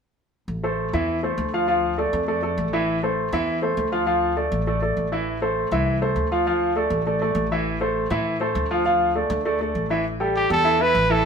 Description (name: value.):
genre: latin, salsa.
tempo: 201 BPM.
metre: 4/4.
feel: straight.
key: A minor.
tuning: A4 = 440 Hz.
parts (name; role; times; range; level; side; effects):
upright bass; bass; 0.5-11.3 s; A1 to A2; -27 LUFS; equal; none.
clear concert grand piano; accompaniment; 0.6-11.2 s; E3 to F5; -22 LUFS; equal; none.
warm trumpet; melody; 10.4-11.3 s; G4 to B4; -18 LUFS; right 2 dB; none.
room: moderate stone room reverb, RT60 1.0 s.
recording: band playing live in one room.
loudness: -20 LUFS.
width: side -6 dB against mid.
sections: 0.5-10.1 A section; 10.1-11.3 B section.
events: none.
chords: 0.5 Am; 1.7 Dm; 2.9 Am; 4.1 Dm; 5.3 Am; 6.5 Dm; 7.7 Am; 8.9 Dm; 10.1 Asus2.